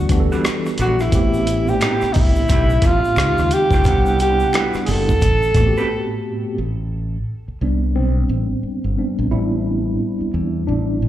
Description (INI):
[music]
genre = R&B, neo-soul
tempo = 88 BPM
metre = 4/4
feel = swing 61% on 16ths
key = A dorian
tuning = A4 = 440 Hz
[part]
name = breathy tenor saxophone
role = melody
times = 0.0-6.3 s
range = D#4 to A4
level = -20 LUFS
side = right 1 dB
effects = slapback echo
[part]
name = mellow tine electric piano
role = accompaniment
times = 0.0-11.1 s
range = A2 to F#5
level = -22 LUFS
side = equal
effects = medium stereo tremolo, slapback echo
[part]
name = fingered electric bass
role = bass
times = 0.0-11.1 s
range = F#1 to E2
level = -20 LUFS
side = equal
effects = none
[part]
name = dusty soul sampler-style drum kit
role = drums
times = 0.1-5.7 s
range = hi-hat, kick drum, rim click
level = -19 LUFS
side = equal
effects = overdrive
[part]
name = egg shaker and finger snaps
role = percussion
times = 0.1-5.9 s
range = none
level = -35 LUFS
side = left 2 dB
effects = slapback echo
[part]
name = electric guitar through a small old amp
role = second line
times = 0.3-5.9 s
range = G3 to B4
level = -28 LUFS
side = right 6 dB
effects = slapback echo
[sound]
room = small room ambience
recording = live gig heard through the venue's PA, club reverb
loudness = -16 LUFS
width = side -12 dB against mid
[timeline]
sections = 0.0-6.6 A section; 6.6-11.1 B section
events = break 5.9-6.6; tine electric piano solo 6.6-11.1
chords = 0.0 Em9; 1.1 Am7; 3.2 C#maj9#11; 3.8 Cmaj9#11; 5.2 Am9; 6.6 Am11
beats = 0.44 | 1.12 1.80 2.49 3.17 | 3.85 4.53 5.21 5.89 | 6.58 7.26 7.94 8.62 | 9.30 9.99 10.67